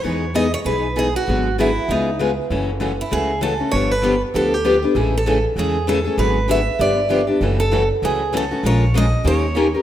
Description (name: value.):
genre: acoustic string swing (jazz manouche).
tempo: 196 BPM.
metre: 4/4.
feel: swing 59% on 8ths.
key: unclear.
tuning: A4 = 442 Hz.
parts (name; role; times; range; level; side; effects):
picked steel-string acoustic guitar; melody; 0.0-9.7 s; D#4 to E5; -22 LUFS; right 2 dB; none.
picked steel-string acoustic guitar; accompaniment; 0.0-9.8 s; C#3 to A#4; -20 LUFS; left 4 dB; none.
upright bass; bass; 0.0-9.7 s; F#1 to E2; -22 LUFS; equal; none.
picked steel-string acoustic guitar; accompaniment; 0.1-9.7 s; C#3 to A#4; -28 LUFS; right 7 dB; none.
room: moderate lush hall reverb, RT60 2.2 s.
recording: rough home demo mix.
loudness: -16 LUFS.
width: side -11 dB against mid.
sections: 0.0-2.5 A section; 2.5-9.8 B section.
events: none.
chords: 0.0 Emaj7; 1.3 G#m7b5; 1.9 C#7; 2.5 F#m9; 3.7 G7; 5.0 Amaj7; 6.2 G#m7b5; 6.8 G7; 7.4 F#m9; 8.6 A#m7; 9.2 D#7.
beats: | 0.05 0.35 0.66 0.97 | 1.27 1.58 1.89 2.19 | 2.50 2.81 3.11 3.42 | 3.73 4.03 4.34 4.65 | 4.95 5.26 5.57 5.87 | 6.18 6.49 6.79 7.10 | 7.41 7.71 8.02 8.33 | 8.63 8.94 9.24 9.55.